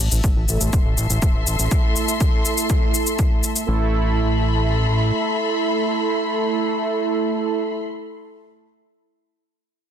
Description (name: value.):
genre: melodic techno.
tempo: 122 BPM.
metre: 4/4.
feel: straight.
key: A minor.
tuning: A4 = 440 Hz.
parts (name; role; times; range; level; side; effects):
fat analog bass; bass; 0.0-5.1 s; A1; -20 LUFS; equal; sidechain pumping.
sub drop; sound effects; 0.0-1.7 s; none; -30 LUFS; equal; none.
dark studio string section; texture; 0.0-7.9 s; A4 to C6; -26 LUFS; left 4 dB; sidechain pumping.
shaker; drums; 0.1-3.7 s; none; -24 LUFS; left 3 dB; none.
electronic kick drum; drums; 0.2-3.3 s; none; -19 LUFS; equal; none.
brassy analog pad; stabs; 0.5-7.6 s; A3 to A4; -23 LUFS; right 4 dB; chorus, sidechain pumping, ping-pong delay.
room: light reverb.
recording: dense, heavily limited modern master.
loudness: -18 LUFS.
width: side -9 dB against mid.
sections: 0.0-3.7 A section; 3.7-7.6 B section.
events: impact 0.0-1.7; filter sweep on analog synth pad 0.0-3.7.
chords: 0.0 Am.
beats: 0.24 0.73 1.22 | 1.71 2.21 2.70 3.19 | 3.68 4.17 4.66 5.16 | 5.65 6.14 6.63 7.12.